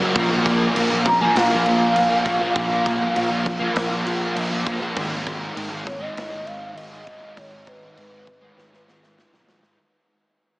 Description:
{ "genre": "rock, shoegaze and dream pop", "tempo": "100 BPM", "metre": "4/4", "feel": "straight", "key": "unclear", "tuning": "A4 = 441 Hz", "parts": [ { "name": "fuzz guitar", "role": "riff", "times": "0.0-9.8 s", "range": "Gb2 to Bb3", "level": "-22 LUFS", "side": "equal", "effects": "distortion, ensemble chorus" }, { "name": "fingered electric bass", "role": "bass", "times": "0.2-9.8 s", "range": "Ab1 to Cb2", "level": "-29 LUFS", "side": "equal", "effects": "none" }, { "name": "big rock drum kit", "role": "drums", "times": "0.2-9.8 s", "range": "crash cymbal, kick drum, snare drum", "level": "-27 LUFS", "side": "equal", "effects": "none" }, { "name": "pure breathy sine lead", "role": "melody", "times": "1.1-9.4 s", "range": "Cb5 to Bb5", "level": "-24 LUFS", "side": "equal", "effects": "chorus, diffuse ambient delay" } ], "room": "wet huge ambient reverb, RT60 7.8 s", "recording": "dreamy mix soaked in reverb, small speaker sound", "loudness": "-18 LUFS", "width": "side -23 dB against mid", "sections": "0.0-9.8 A section", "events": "fade-out 0.0-9.8; drum fill 8.6-9.8", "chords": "0.2 Bb5; 5.0 Abm", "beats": "| 0.15 0.76 1.35 1.96 | 2.56 3.16 3.76 4.36 | 4.96 5.56 6.17 6.77 | 7.37 7.97 8.58 9.18" }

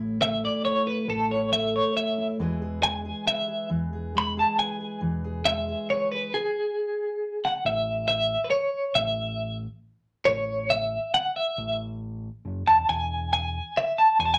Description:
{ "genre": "indie folk with a building arrangement", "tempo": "137 BPM", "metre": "3/4", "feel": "straight", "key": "A major", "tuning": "A4 = 441 Hz", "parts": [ { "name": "fingerpicked steel-string acoustic guitar", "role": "accompaniment", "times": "0.0-6.3 s", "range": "A2 to C#5", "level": "-32 LUFS", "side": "equal", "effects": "none" }, { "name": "fingered electric bass", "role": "bass", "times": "0.0-14.4 s", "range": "E1 to A1", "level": "-37 LUFS", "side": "equal", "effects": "none" }, { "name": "twelve-string electric guitar", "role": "melody", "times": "0.2-14.4 s", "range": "G#4 to B5", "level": "-26 LUFS", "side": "equal", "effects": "tremolo" } ], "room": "wet club reverb, RT60 0.5 s", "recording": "none", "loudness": "-26 LUFS", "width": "mono", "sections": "0.0-7.7 A section; 7.7-14.4 B section", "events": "none", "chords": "0.0 A; 2.4 E; 7.7 A5; 12.9 E", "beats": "0.21 0.65 | 1.09 1.52 1.96 | 2.40 2.84 3.28 | 3.71 4.15 4.59 | 5.03 5.47 5.90 | 6.34 6.78 7.21 | 7.65 8.09 8.53 | 8.96 9.40 9.83 | 10.27 10.71 11.14 | 11.58 12.01 12.45 | 12.89 13.32 13.76 | 14.19" }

